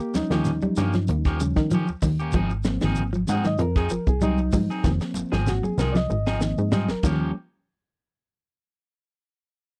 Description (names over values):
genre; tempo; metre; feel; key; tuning
afrobeat; 96 BPM; 4/4; swing 53% on 16ths; unclear; A4 = 442 Hz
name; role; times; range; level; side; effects
bright reed electric piano; accompaniment; 0.0-7.3 s; F3 to Gb5; -31 LUFS; equal; overdrive
electric guitar at the edge of break-up; stabs; 0.0-7.3 s; F3 to Ab4; -34 LUFS; equal; none
plucky analog bass; bass; 0.1-7.3 s; F1 to Eb3; -27 LUFS; equal; none
tight funk drum kit; drums; 0.1-7.2 s; crash cymbal, hi-hat, kick drum, snare drum; -29 LUFS; equal; none
shekere; percussion; 0.1-7.2 s; none; -36 LUFS; equal; none
congas; percussion; 0.2-7.2 s; none; -32 LUFS; equal; none
semi-hollow electric guitar; arpeggios; 0.3-7.2 s; Db3 to G3; -30 LUFS; equal; none
room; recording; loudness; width
little or no reverb; dry, close 1970s-style studio recording; -24 LUFS; mono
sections
0.0-7.4 A section; 7.4-9.8 B section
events
reed electric piano solo 0.0-7.4; drum fill 4.9-7.4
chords
0.0 Eb9; 2.3 Ab6; 7.0 Eb9; 7.4 N.C.